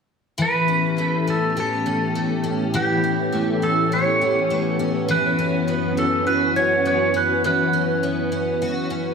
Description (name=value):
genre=dream pop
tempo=102 BPM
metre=4/4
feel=straight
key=unclear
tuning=A4 = 440 Hz
part: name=clean lap steel guitar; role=melody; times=0.4-9.1 s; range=G4 to C#5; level=-22 LUFS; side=right 2 dB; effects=digital delay
part: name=soft string machine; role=sustained chords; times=0.4-9.1 s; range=F#2 to G4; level=-24 LUFS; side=equal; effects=phaser, ensemble chorus
part: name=picked twelve-string acoustic guitar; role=arpeggios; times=0.4-9.1 s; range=E3 to G4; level=-24 LUFS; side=left 3 dB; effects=ensemble chorus, digital delay
room=wet scoring stage reverb, RT60 2.0 s, studio ambience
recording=none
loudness=-18 LUFS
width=side -5 dB against mid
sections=0.4-9.1 A section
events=none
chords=0.4 A7; 5.1 F#7sus4